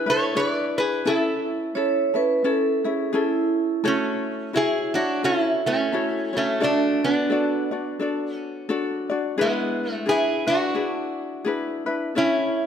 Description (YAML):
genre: Hawaiian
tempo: 86 BPM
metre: 4/4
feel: swing 58% on 8ths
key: A major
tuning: A4 = 440 Hz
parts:
  - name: metal-body resonator slide guitar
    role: melody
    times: 0.0-12.7 s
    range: G#3 to D5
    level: -23 LUFS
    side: right 1 dB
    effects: none
  - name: ukulele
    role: accompaniment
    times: 0.0-12.7 s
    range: C#4 to D5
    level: -26 LUFS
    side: left 3 dB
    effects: none
  - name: vibraphone with medium hard mallets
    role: second line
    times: 1.8-3.8 s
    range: E4 to C#5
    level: -23 LUFS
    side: right 5 dB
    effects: none
room: moderate concert hall reverb, RT60 1.8 s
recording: none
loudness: -21 LUFS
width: side -8 dB against mid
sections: 0.0-3.8 A section; 3.8-12.7 B section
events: none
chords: 0.0 E7; 1.1 Amaj7; 3.8 A6; 6.6 D; 9.4 E7; 12.2 A